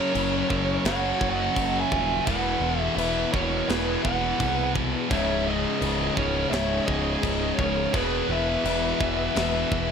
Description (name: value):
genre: heavy metal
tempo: 85 BPM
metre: 4/4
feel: straight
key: unclear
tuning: A4 = 440 Hz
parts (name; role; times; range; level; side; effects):
- high-gain lead guitar; melody; 0.0-9.9 s; B4 to G#5; -28 LUFS; right 1 dB; distortion, ping-pong delay
- dark smooth lead guitar; second line; 0.0-9.9 s; G#4 to E5; -34 LUFS; right 4 dB; overdrive
- warm symphonic string section; sustained chords; 0.0-9.9 s; E3 to C#5; -37 LUFS; right 1 dB; none
- distorted electric guitar; riff; 0.0-9.9 s; C#2 to F#3; -30 LUFS; left 13 dB; overdrive
- fuzz guitar; riff; 0.0-9.9 s; C#2 to F#3; -31 LUFS; equal; distortion
- scooped high-gain guitar; riff; 0.0-9.9 s; C#2 to F#3; -31 LUFS; right 15 dB; distortion
- growling picked electric bass; bass; 0.2-9.9 s; C#1 to B#1; -31 LUFS; equal; overdrive
- tight metal drum kit; drums; 0.2-9.9 s; china cymbal, kick drum, snare drum; -32 LUFS; equal; none
room: small room ambience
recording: none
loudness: -22 LUFS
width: side -7 dB against mid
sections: 0.0-9.9 A section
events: none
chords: 0.0 F#; 2.3 E; 5.1 C#m; 7.9 E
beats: 0.14 0.85 1.56 | 2.27 2.97 3.68 4.39 | 5.10 5.81 6.52 7.23 | 7.94 8.65 9.36